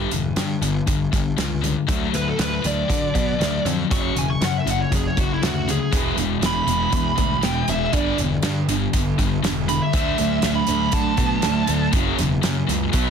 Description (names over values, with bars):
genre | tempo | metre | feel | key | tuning
quiet-loud alternative rock | 119 BPM | 4/4 | straight | unclear | A4 = 440 Hz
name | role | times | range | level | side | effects
twelve-string electric guitar | arpeggios | 0.0-5.9 s | F#2 to A3 | -28 LUFS | right 1 dB | analog chorus
scooped high-gain guitar | riff | 0.0-13.1 s | F#2 to B3 | -24 LUFS | left 11 dB | distortion
fuzz picked electric bass | bass | 0.0-13.1 s | E1 to D3 | -26 LUFS | equal | overdrive
loose indie drum kit | drums | 0.1-13.1 s | hi-hat, kick drum, snare drum | -24 LUFS | right 1 dB | none
bluesy overdriven lead guitar | melody | 2.2-11.9 s | E4 to C#6 | -25 LUFS | right 2 dB | distortion, digital delay
thick fuzz guitar | riff | 5.9-13.1 s | E2 to D4 | -25 LUFS | right 14 dB | distortion
room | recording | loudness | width
light reverb, small room ambience | dense, heavily limited modern master | -18 LUFS | side -7 dB against mid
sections
0.0-13.1 A section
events
lead electric guitar solo 0.0-13.1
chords
0.0 G5; 1.9 D; 3.9 F#5; 5.9 E; 7.9 G5; 9.9 D; 11.9 F#5